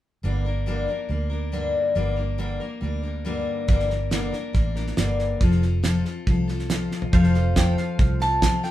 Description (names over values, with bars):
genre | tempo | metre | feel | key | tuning
honky-tonk and classic country | 139 BPM | 4/4 | straight | G minor | A4 = 440 Hz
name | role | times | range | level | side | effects
picked steel-string acoustic guitar | accompaniment | 0.2-8.7 s | G2 to Bb4 | -25 LUFS | left 3 dB | none
vintage muted fingered electric bass | bass | 0.2-8.6 s | F1 to D2 | -25 LUFS | right 1 dB | none
damped 70s drum kit | drums | 3.7-8.7 s | hi-hat, kick drum, snare drum, toms | -23 LUFS | right 1 dB | none
pedal steel guitar | sustained chords | 7.1-8.7 s | C5 to F5 | -32 LUFS | right 4 dB | none
mandolin | melody | 7.6-8.7 s | F5 to A5 | -25 LUFS | right 1 dB | none
room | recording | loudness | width
moderate studio ambience, RT60 0.5 s | band playing live in one room | -21 LUFS | side -14 dB against mid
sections
0.2-7.1 A section; 7.1-8.7 B section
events
drum fill 6.9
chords
0.2 Gm; 5.4 F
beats
| 0.24 0.67 1.10 1.53 | 1.96 2.39 2.82 3.25 | 3.69 4.12 4.55 4.98 | 5.41 5.84 6.27 6.70 | 7.13 7.56 7.99 8.42